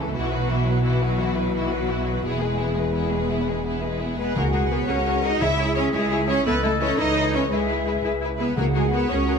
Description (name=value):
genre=cinematic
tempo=114 BPM (dotted quarters)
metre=6/8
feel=straight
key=unclear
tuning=A4 = 438 Hz
part: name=warm symphonic violin section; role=melody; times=0.0-9.3 s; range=F#4 to C#5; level=-34 LUFS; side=left 6 dB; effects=none
part: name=warm symphonic violin section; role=second line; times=0.0-9.4 s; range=C#4 to E5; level=-29 LUFS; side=left 1 dB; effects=none
part: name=rich symphonic viola section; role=accompaniment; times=0.0-9.3 s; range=E3 to A4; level=-31 LUFS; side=left 1 dB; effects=none
part: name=dark French horn section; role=sustained chords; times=0.0-9.4 s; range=E3 to A4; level=-29 LUFS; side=left 8 dB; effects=none
part: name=rich symphonic cello section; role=bass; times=0.0-9.4 s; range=E2 to E4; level=-26 LUFS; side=right 2 dB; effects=none
part: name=rich symphonic double bass section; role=bass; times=0.0-9.4 s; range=E1 to C#2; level=-27 LUFS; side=right 3 dB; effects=none
part: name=bright flute section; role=second line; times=4.4-9.4 s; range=C#5 to F#5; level=-30 LUFS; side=left 2 dB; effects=none
part: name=mellow clarinet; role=second line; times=4.4-9.4 s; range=F#4 to B4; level=-32 LUFS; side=left 5 dB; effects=none
part: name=timpani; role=percussion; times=4.4-5.9, 8.6-9.1 s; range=C#3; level=-28 LUFS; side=right 1 dB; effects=none
room=moderate scoring stage reverb, RT60 1.5 s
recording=none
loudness=-20 LUFS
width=side -6 dB against mid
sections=0.0-4.4 A section; 4.4-9.4 B section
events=build-up 0.0-4.4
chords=0.2 Bsus4; 2.2 E; 4.4 F#add9/C#; 5.4 C#m; 6.5 Aadd9/C#; 7.5 E/C#; 8.6 F#add9/C#